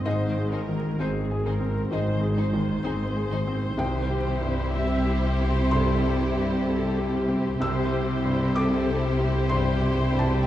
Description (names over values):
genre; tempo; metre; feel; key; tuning
cinematic, emotional film score for orchestra; 64 BPM; 4/4; rubato; unclear; A4 = 440 Hz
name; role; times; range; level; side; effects
warm studio violin section; second line; 0.0-10.5 s; D#4 to G#4; -34 LUFS; left 2 dB; none
felt-muted upright piano; accompaniment; 0.0-10.5 s; C2 to E6; -29 LUFS; left 1 dB; none
rich studio viola section; accompaniment; 0.0-10.5 s; G4 to E5; -33 LUFS; equal; none
concert harp; arpeggios; 0.0-10.5 s; G#2 to G5; -34 LUFS; left 4 dB; none
rich studio violin section; melody; 0.1-10.5 s; B#4; -37 LUFS; left 5 dB; none
rich studio cello section; bass; 0.1-10.5 s; G#2 to C3; -28 LUFS; right 1 dB; none
rich symphonic double bass section; bass; 0.1-10.5 s; G#1 to C2; -28 LUFS; right 1 dB; none
room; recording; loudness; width
moderate concert hall reverb, RT60 2.3 s; dark, warm production, vinyl crackle; -22 LUFS; side -13 dB against mid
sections
0.0-10.5 A section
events
none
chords
0.0 G#; 3.8 C